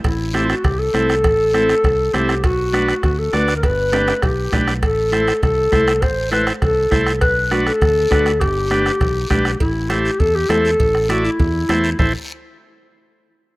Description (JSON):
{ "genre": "latin, cumbia", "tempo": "201 BPM", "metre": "4/4", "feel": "straight", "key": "A dorian", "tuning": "A4 = 439 Hz", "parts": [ { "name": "breathy clarinet", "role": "second line", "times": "0.0-12.1 s", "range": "E4 to C5", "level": "-18 LUFS", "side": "left 1 dB", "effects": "none" }, { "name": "fingered electric bass", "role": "bass", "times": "0.0-12.1 s", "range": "G1 to E2", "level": "-22 LUFS", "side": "equal", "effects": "none" }, { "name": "bombo", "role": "percussion", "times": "0.0-12.1 s", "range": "none", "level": "-21 LUFS", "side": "right 1 dB", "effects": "none" }, { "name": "congas", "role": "percussion", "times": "0.0-12.1 s", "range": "none", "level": "-27 LUFS", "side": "left 2 dB", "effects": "none" }, { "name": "cowbell and timbales", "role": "percussion", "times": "0.0-12.1 s", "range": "none", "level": "-31 LUFS", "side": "right 3 dB", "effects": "none" }, { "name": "guiro", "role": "percussion", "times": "0.0-12.1 s", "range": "none", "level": "-34 LUFS", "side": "left 2 dB", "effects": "none" }, { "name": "combo organ", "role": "accompaniment", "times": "0.3-12.1 s", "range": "C4 to D5", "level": "-22 LUFS", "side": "right 1 dB", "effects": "none" } ], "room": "light reverb, studio reverb", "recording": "rough home demo mix", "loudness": "-14 LUFS", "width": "side -20 dB against mid", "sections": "0.0-9.6 A section; 9.6-12.0 B section; 12.0-13.2 C section", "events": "drum fill 3.9-4.8", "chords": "0.0 Am; 2.4 Bm; 3.6 G; 4.8 Am; 7.2 Bm; 8.4 G; 9.6 Am" }